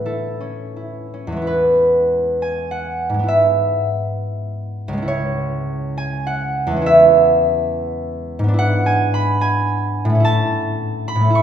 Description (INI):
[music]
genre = classical, solo harp piece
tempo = 81-110 BPM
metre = 3/4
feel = rubato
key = E major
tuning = A4 = 440 Hz
[part]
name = concert harp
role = solo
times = 0.0-11.4 s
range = C#2 to C#6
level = -16 LUFS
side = right 1 dB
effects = none
[sound]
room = wet recital hall reverb, RT60 1.8 s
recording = recorded in a church or concert hall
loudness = -15 LUFS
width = side -9 dB against mid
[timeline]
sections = 0.0-1.5 A section; 1.5-11.4 B section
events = none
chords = 0.0 A; 1.5 E; 3.3 E/G#; 5.1 C#m; 6.9 C#m/E; 8.6 E7/G#; 10.2 A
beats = 0.04 0.77 | 1.46 2.09 2.72 | 3.30 3.89 4.48 | 5.06 5.66 6.27 | 6.86 7.43 8.01 | 8.57 9.13 9.69 | 10.24 10.80 11.36